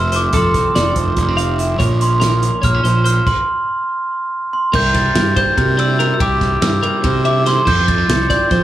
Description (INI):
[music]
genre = math rock and midwest emo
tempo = 286 BPM (eighths)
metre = 7/8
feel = straight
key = unclear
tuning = A4 = 440 Hz
[part]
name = glockenspiel with soft plastic mallets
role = melody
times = 0.0-8.6 s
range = C6 to A6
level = -18 LUFS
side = right 1 dB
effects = plate reverb
[part]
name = twangy electric guitar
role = accompaniment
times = 0.0-8.6 s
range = F2 to Bb4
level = -23 LUFS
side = right 6 dB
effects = plate reverb
[part]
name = twelve-string electric guitar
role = arpeggios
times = 0.0-8.6 s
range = G4 to F5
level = -22 LUFS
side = left 2 dB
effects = wide subtle chorus, plate reverb
[part]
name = fuzz fingered electric bass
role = bass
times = 0.0-8.6 s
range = F1 to F3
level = -17 LUFS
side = equal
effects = overdrive
[part]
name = loose indie drum kit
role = drums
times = 0.1-8.6 s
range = crash cymbal, hi-hat, kick drum, ride cymbal, snare drum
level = -20 LUFS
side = equal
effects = none
[sound]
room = moderate studio reverb, RT60 0.6 s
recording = small room ambience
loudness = -13 LUFS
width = side -13 dB against mid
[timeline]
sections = 0.0-4.7 A section; 4.7-8.6 B section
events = stop 3.3-4.7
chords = 0.0 Fmaj7; 1.8 Bbmadd9; 4.7 C7; 7.7 Fmaj7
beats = 0.12 | 0.33 0.54 0.75 0.96 1.17 1.38 1.59 | 1.80 2.01 2.22 2.43 2.64 2.85 3.06 | 3.27 3.48 3.69 3.90 4.11 4.32 4.53 | 4.74 4.95 5.16 5.37 5.58 5.79 6.00 | 6.21 6.42 6.62 6.83 7.04 7.25 7.46 | 7.67 7.88 8.09 8.30 8.51